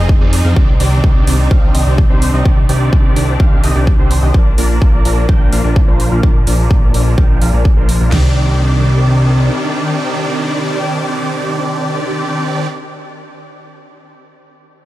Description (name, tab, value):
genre	EDM, festival progressive house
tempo	127 BPM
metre	4/4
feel	straight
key	C minor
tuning	A4 = 435 Hz
part	clear studio string section	sustained chords	0.0-12.7 s	C3 to Ab4	-23 LUFS	equal	sidechain pumping, low-pass filter
part	big supersaw lead	riff	0.0-12.7 s	Eb3 to G5	-18 LUFS	equal	phaser, sidechain pumping, low-pass filter, dub echo
part	fat analog bass	bass	0.0-9.5 s	F1 to F2	-14 LUFS	equal	sidechain pumping
part	big-room dance drum kit	drums	0.1-8.2 s	crash cymbal, kick drum, snare drum, toms	-11 LUFS	equal	overdrive, studio reverb
part	electronic hi-hat	drums	0.3-8.0 s	none	-26 LUFS	right 1 dB	overdrive, studio reverb
room	little or no reverb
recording	none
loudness	-10 LUFS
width	side -16 dB against mid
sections	0.0-8.1 A section; 8.1-11.9 B section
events	filter sweep on supersaw synth 0.0-8.1; filter sweep on string section 0.0-8.1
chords	0.0 Fm7; 0.6 Cmadd9; 4.3 Bb; 8.1 Cmadd9